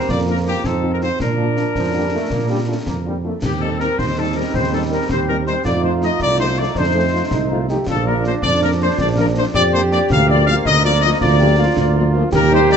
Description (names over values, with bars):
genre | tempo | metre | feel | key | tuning
military-style march for wind band | 108 BPM (dotted quarters) | 6/8 | straight | Bb major | A4 = 440 Hz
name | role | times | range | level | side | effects
dark trumpet section | melody | 0.0-12.8 s | G4 to F5 | -22 LUFS | left 2 dB | none
clear euphonium | second line | 0.0-12.8 s | Bb3 to G4 | -22 LUFS | right 3 dB | none
warm trombone section | sustained chords | 0.0-12.8 s | F3 to Eb4 | -26 LUFS | right 2 dB | none
mellow tuba | bass | 0.1-12.8 s | Bb1 to Bb2 | -19 LUFS | right 2 dB | none
concert snare drum, concert bass drum and clash cymbals | drums | 0.1-12.8 s | none | -26 LUFS | left 2 dB | none
mellow French horn section | accompaniment | 0.3-12.8 s | F3 to F4 | -26 LUFS | left 5 dB | none
small flute group | second line | 3.4-12.8 s | G4 to F5 | -22 LUFS | left 4 dB | none
room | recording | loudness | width
moderate large studio reverb, RT60 1.1 s | nothing above 8.0 kHz | -15 LUFS | side -7 dB against mid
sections
0.0-3.4 A section; 3.4-12.8 A section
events
none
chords
0.1 Bb/F; 0.6 F7; 1.2 Bb; 3.4 Cm/Eb; 5.7 F7; 7.9 Bb; 10.1 Bb/D